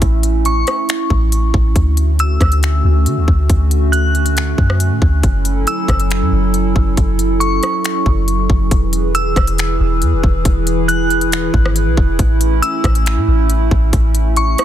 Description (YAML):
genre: hip hop, atmospheric cloud-rap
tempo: 138 BPM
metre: 4/4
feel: half-time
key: unclear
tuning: A4 = 439 Hz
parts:
  - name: warbly tape-like pad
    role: sustained chords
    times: 0.0-14.6 s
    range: D3 to B4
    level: -20 LUFS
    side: right 2 dB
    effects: chorus, built-in reverb, sidechain pumping
  - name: soft 808-style bass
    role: bass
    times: 0.0-14.6 s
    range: E1 to D3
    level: -15 LUFS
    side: equal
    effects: none
  - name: trap drum kit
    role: drums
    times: 0.0-14.6 s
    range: finger snaps, hi-hat, kick drum, rim click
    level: -16 LUFS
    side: equal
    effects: soft clipping on snare
  - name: glassy synth bell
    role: melody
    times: 0.5-14.6 s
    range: C#6 to F#6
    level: -22 LUFS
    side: left 1 dB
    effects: chorus, tremolo, ping-pong delay
room: digital ambience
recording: dense, heavily limited modern master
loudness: -12 LUFS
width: side -11 dB against mid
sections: 0.0-8.7 A section; 8.7-14.6 B section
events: none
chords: 0.0 A; 1.8 Dmaj7; 5.2 F#m7; 8.7 E; 12.2 A